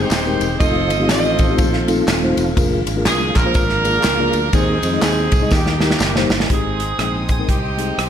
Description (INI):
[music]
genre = uptempo gospel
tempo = 122 BPM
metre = 4/4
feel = swing 60% on 8ths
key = Ab major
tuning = A4 = 442 Hz
[part]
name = edgy saxophone section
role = melody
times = 0.0-8.1 s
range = Bb3 to Eb5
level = -21 LUFS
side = right 2 dB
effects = slapback echo
[part]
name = mellow tine electric piano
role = accompaniment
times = 0.0-7.9 s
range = Ab2 to Eb5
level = -22 LUFS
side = left 4 dB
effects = slow stereo tremolo, slapback echo
[part]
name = tonewheel organ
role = sustained chords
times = 0.0-6.5 s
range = D3 to G5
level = -24 LUFS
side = right 1 dB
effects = slow rotary speaker, chorus vibrato
[part]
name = fingered electric bass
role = bass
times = 0.0-8.1 s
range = Eb1 to F2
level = -23 LUFS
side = equal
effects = none
[part]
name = natural country drum kit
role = drums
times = 0.1-8.1 s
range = hi-hat, kick drum, ride cymbal, rim click, snare drum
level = -19 LUFS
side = equal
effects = none
[part]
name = handclaps and tambourine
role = percussion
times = 0.1-6.4 s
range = none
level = -30 LUFS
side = left 3 dB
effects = none
[part]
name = warm symphonic string section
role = sustained chords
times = 6.5-8.1 s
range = Eb5 to Eb6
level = -32 LUFS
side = left 4 dB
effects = none
[sound]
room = moderate lush hall reverb, RT60 1.7 s, small room ambience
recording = big arena sound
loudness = -14 LUFS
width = side -9 dB against mid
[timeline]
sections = 0.0-6.5 A section; 6.5-8.1 B section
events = drum fill 5.5-6.5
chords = 0.0 Abmaj7; 0.6 F7; 2.6 Bb7/F; 4.5 Ab/Eb; 5.5 Eb; 6.5 Abmaj7